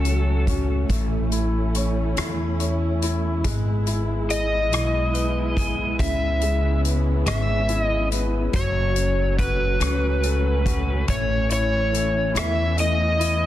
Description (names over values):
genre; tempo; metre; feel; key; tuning
six-eight pop ballad; 47 BPM (dotted quarters); 6/8; straight; unclear; A4 = 441 Hz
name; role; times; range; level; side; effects
overdriven slide guitar; melody; 0.0-0.4, 4.3-13.5 s; A4 to E5; -25 LUFS; equal; digital delay
clear concert grand piano; accompaniment; 0.0-13.5 s; C#3 to C#5; -29 LUFS; left 5 dB; none
dark studio string section; sustained chords; 0.0-13.5 s; C#3 to F#4; -30 LUFS; right 2 dB; stereo widening
upright bass; bass; 0.0-13.5 s; F#1 to E2; -23 LUFS; equal; none
soft-mallet drum kit; drums; 0.1-13.4 s; hi-hat, kick drum, rim click; -28 LUFS; equal; soft clipping on snare
room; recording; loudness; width
small room ambience; dense, heavily limited modern master; -20 LUFS; side -13 dB against mid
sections
0.0-13.5 A section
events
none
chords
0.0 F#m; 0.9 A; 3.4 E/G#; 6.0 C#m7; 8.5 F#m; 11.1 A